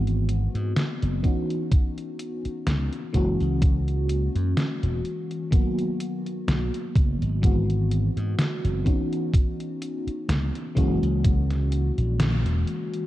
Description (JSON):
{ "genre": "vaporwave", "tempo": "63 BPM", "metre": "4/4", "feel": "swing 55% on 16ths", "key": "unclear", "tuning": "A4 = 436 Hz", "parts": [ { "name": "FM electric piano with soft pad layer", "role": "accompaniment", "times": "0.0-13.1 s", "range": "D#3 to F#4", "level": "-28 LUFS", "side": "left 1 dB", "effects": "tremolo, wide subtle chorus, tape echo" }, { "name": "slap bass", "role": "bass", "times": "0.0-12.6 s", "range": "E1 to G#2", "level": "-24 LUFS", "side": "equal", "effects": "none" }, { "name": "detuned 8-bit digital drum machine", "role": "drums", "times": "0.1-13.1 s", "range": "hi-hat, snare drum", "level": "-28 LUFS", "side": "equal", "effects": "gated reverb" }, { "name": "electronic kick drum", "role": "drums", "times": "1.2-11.4 s", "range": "none", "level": "-21 LUFS", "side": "equal", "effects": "none" } ], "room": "light reverb", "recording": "cassette tape", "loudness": "-22 LUFS", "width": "side -15 dB against mid", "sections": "0.0-13.1 A section", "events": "kick drops out 12.2-13.1; band accent 12.2-12.7", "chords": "0.0 G#7alt; 1.2 C#m11; 3.1 F#9; 5.5 Bmaj7; 7.4 G#7alt; 8.9 C#m11; 10.8 F#9", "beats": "0.77 | 1.72 2.67 3.62 4.57 | 5.53 6.48 7.43 8.38 | 9.34 10.29 11.24 12.19" }